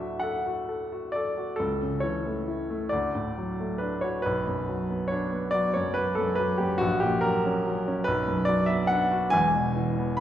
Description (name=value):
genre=classical, romantic nocturne for solo piano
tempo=43-49 BPM (dotted quarters)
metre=12/8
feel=rubato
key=D major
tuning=A4 = 439 Hz
part: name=clear baby grand piano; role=solo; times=0.0-10.2 s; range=E1 to B5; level=-24 LUFS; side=equal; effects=none
room=wet scoring stage reverb, RT60 1.5 s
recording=heard from further back in the room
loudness=-24 LUFS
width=side -11 dB against mid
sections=0.0-10.2 A section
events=none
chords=0.0 D; 1.6 A/C#; 2.9 D; 4.2 Bm; 6.8 F#/A#; 8.1 Bm; 9.3 E